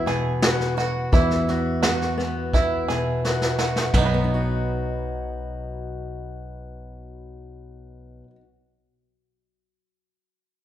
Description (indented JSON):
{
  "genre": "indie folk with a building arrangement",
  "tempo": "85 BPM",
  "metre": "4/4",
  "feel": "straight",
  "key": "B major",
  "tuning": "A4 = 440 Hz",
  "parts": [
    { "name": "fingerpicked steel-string acoustic guitar", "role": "accompaniment", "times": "0.0-8.5 s", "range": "B2 to F#4", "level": "-27 LUFS", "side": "left 2 dB", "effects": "none" },
    { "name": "bluegrass banjo", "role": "arpeggios", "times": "0.0-8.3 s", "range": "B3 to B4", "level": "-28 LUFS", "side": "right 5 dB", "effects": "none" },
    { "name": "picked electric bass", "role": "bass", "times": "0.0-8.2 s", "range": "B1 to E2", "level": "-28 LUFS", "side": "equal", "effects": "none" },
    { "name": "vintage brush drum kit", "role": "drums", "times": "0.1-4.1 s", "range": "china cymbal, kick drum, snare drum, toms", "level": "-23 LUFS", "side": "equal", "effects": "none" }
  ],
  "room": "moderate recital hall reverb, RT60 1.6 s",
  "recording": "recorded in a church or concert hall",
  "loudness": "-20 LUFS",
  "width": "side -11 dB against mid",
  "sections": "0.0-3.9 A section; 3.9-6.8 B section",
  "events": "drum fill 3.2-3.9",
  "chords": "0.0 Esus2; 3.9 B"
}